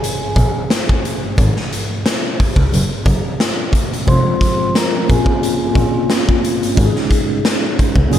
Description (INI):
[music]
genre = hip hop, boom-bap hip-hop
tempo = 89 BPM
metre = 4/4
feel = swing 54% on 16ths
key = unclear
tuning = A4 = 443 Hz
[part]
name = vibraphone with soft mallets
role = melody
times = 0.0-6.1 s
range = Ab4 to C6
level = -23 LUFS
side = right 1 dB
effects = high-pass filter, low-pass filter, analog delay
[part]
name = raw garage drum kit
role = drums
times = 0.0-8.2 s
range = hi-hat, kick drum, snare drum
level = -16 LUFS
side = equal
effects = none
[part]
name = muted double bass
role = bass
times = 0.4-8.2 s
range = F1 to Db2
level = -16 LUFS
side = equal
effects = none
[part]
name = mellow tine electric piano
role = accompaniment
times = 4.1-8.2 s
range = F3 to Ab4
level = -18 LUFS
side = left 1 dB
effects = medium stereo tremolo, high-pass filter, low-pass filter
[sound]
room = light reverb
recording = none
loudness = -13 LUFS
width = side -10 dB against mid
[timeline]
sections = 0.0-8.2 A section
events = break 0.0-4.1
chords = 0.0 Absus2/Bb; 1.4 Absus4; 2.7 N.C.; 4.1 Fm; 5.1 Bbmadd9; 6.8 Absus4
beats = 0.03 0.70 | 1.38 2.05 2.73 3.40 | 4.08 4.75 5.42 6.10 | 6.77 7.45 8.12